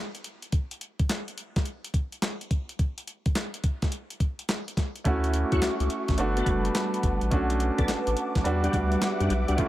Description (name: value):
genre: R&B, new jack swing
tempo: 106 BPM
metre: 4/4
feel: swing 66% on 16ths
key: unclear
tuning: A4 = 440 Hz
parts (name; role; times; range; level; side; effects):
- crisp 8-bit digital drum machine; drums; 0.1-9.7 s; handclaps, hi-hat, kick drum, snare drum; -28 LUFS; equal; none
- bright grand piano; accompaniment; 5.0-9.7 s; G3 to F#4; -28 LUFS; right 2 dB; none
- sweeping resonant pad; sustained chords; 5.4-9.7 s; G3 to D6; -31 LUFS; equal; chorus
- round analog bass; bass; 5.1-9.7 s; F#1 to F#2; -28 LUFS; equal; none
- tonewheel organ; stabs; 5.5-9.6 s; G3 to C#5; -33 LUFS; left 2 dB; chorus vibrato, fast rotary speaker
room: little or no reverb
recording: none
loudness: -25 LUFS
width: side -15 dB against mid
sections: 0.0-9.7 A section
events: none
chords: 0.0 N.C.; 5.1 Dmaj9; 6.2 Gmaj9; 7.3 Bm7; 8.5 Em9